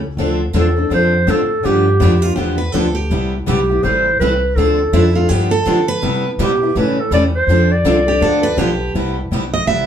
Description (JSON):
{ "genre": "acoustic string swing (jazz manouche)", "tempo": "164 BPM", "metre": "4/4", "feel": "swing 62% on 8ths", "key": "C major", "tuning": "A4 = 440 Hz", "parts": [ { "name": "upright bass", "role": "bass", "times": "0.0-9.9 s", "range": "A1 to D3", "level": "-18 LUFS", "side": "equal", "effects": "none" }, { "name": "picked steel-string acoustic guitar", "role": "accompaniment", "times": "0.2-9.9 s", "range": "C3 to A4", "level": "-20 LUFS", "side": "left 3 dB", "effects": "none" }, { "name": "picked steel-string acoustic guitar", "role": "accompaniment", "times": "0.2-9.9 s", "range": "C3 to A4", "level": "-23 LUFS", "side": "right 3 dB", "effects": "none" }, { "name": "breathy clarinet", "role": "melody", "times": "0.6-8.8 s", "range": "G4 to D5", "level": "-17 LUFS", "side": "right 1 dB", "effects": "none" }, { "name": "picked steel-string acoustic guitar", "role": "second line", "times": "2.0-9.9 s", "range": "E4 to E5", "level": "-20 LUFS", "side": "right 3 dB", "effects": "none" } ], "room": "wet studio reverb, RT60 0.5 s", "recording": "heard from further back in the room", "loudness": "-13 LUFS", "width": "side -9 dB against mid", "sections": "0.0-8.9 A section", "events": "none", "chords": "0.2 Dm7; 1.6 G7; 3.1 Cmaj7; 3.8 Am7; 4.6 Dm7; 5.3 G7; 6.0 Cmaj7; 6.8 A7; 7.5 Dm7; 8.2 G7; 8.9 Cmaj7" }